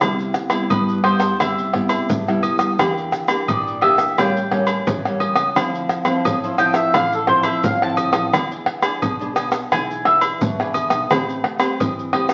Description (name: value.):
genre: samba and choro.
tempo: 86 BPM.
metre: 4/4.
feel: straight.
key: C major.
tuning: A4 = 440 Hz.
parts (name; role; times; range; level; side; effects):
nylon-string guitar; accompaniment; 0.0-12.3 s; G2 to B4; -25 LUFS; equal; none.
upright bass; bass; 0.0-12.3 s; A1 to Bb2; -33 LUFS; equal; none.
agogo bells, tube shaker, surdo, pandeiro and tamborim; percussion; 0.0-12.3 s; none; -22 LUFS; equal; none.
mandolin; melody; 0.7-11.1 s; A4 to A5; -22 LUFS; equal; none.
room: wet studio reverb, RT60 0.9 s.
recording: very old 78 rpm record, vinyl crackle, nothing above 7.9 kHz.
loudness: -19 LUFS.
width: mono.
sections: 0.0-12.3 A section.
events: mandolin solo 0.0-12.3.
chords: 0.0 Cmaj7; 2.8 Em7b5; 4.2 A7b9; 5.6 Dm9; 8.3 E7; 11.1 Am9.